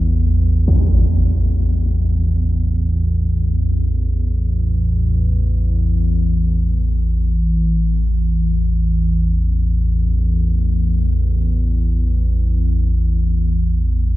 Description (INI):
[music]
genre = dark ambient drone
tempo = free time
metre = none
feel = none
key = unclear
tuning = A4 = 440 Hz
[part]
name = deep rumbling drone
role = drone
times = 0.0-14.2 s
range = A1 to E2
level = -15 LUFS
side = equal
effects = built-in reverb, wide subtle chorus
[part]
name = impact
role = percussion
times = 0.7-0.9 s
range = none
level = -24 LUFS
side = equal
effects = low-pass filter on sfx
[sound]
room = moderate huge ambient reverb, RT60 7.8 s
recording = dark, warm production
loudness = -15 LUFS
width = side -16 dB against mid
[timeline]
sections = 0.0-14.2 A section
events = none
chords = 0.0 A5